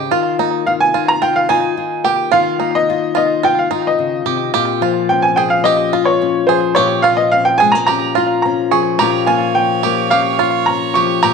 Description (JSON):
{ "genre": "acoustic folk duo or small band", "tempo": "108 BPM", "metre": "4/4", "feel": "straight", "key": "Bb dorian", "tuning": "A4 = 440 Hz", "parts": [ { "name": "nylon-string guitar", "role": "accompaniment", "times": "0.0-11.3 s", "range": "Bb2 to Ab4", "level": "-18 LUFS", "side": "left 11 dB", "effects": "none" }, { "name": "bluegrass banjo", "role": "arpeggios", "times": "0.0-11.3 s", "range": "Eb4 to Ab4", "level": "-19 LUFS", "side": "right 12 dB", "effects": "slapback echo" }, { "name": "clear upright piano", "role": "melody", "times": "0.7-11.3 s", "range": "C5 to Db6", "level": "-15 LUFS", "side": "right 1 dB", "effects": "none" }, { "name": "bright fiddle", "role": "second line", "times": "9.0-11.3 s", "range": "Db5", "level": "-21 LUFS", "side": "right 13 dB", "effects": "none" } ], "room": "moderate echo chamber reverb, RT60 1.8 s, small room reverb", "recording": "1960s-style stereo with parts hard left and right", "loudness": "-12 LUFS", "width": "side -5 dB against mid", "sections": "0.0-9.0 A section; 9.0-11.3 B section", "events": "upright piano solo 0.0-9.0", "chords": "0.1 Ebsus2; 4.5 Bbm", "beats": "| 0.11 0.67 1.22 1.77 | 2.33 2.88 3.43 3.99 | 4.54 5.10 5.66 6.21 | 6.77 7.33 7.88 8.44 | 9.00 9.56 10.12 10.67 | 11.23" }